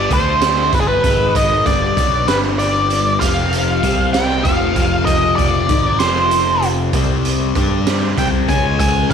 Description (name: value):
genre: psychedelic rock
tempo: 64 BPM (dotted quarters)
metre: 6/8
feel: straight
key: unclear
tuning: A4 = 440 Hz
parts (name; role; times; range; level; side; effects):
- octave-fuzz lead guitar; melody; 0.0-9.1 s; Ab4 to G#5; -17 LUFS; equal; distortion, slapback echo
- tonewheel organ; sustained chords; 0.0-9.1 s; C3 to C6; -27 LUFS; right 12 dB; overdrive, chorus vibrato, slow rotary speaker
- fuzz guitar; riff; 0.0-9.1 s; F2 to G4; -20 LUFS; left 12 dB; distortion, phaser
- fuzz picked electric bass; bass; 0.0-9.1 s; F1 to G2; -21 LUFS; right 1 dB; overdrive
- raw garage drum kit; drums; 0.1-9.1 s; hi-hat, kick drum, snare drum; -20 LUFS; right 3 dB; none
room: light reverb, small room reverb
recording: 1960s-style stereo with parts hard left and right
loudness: -13 LUFS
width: side -7 dB against mid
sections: 0.0-9.1 A section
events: none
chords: 0.1 D5; 0.7 G; 1.0 Ab5; 1.7 G; 3.2 F5; 3.8 C5; 4.5 F5; 6.9 C5; 7.6 G5; 8.2 C5; 8.5 C#5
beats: 0.42 | 1.35 2.28 | 3.21 4.14 | 5.08 6.00 | 6.94 7.87 | 8.80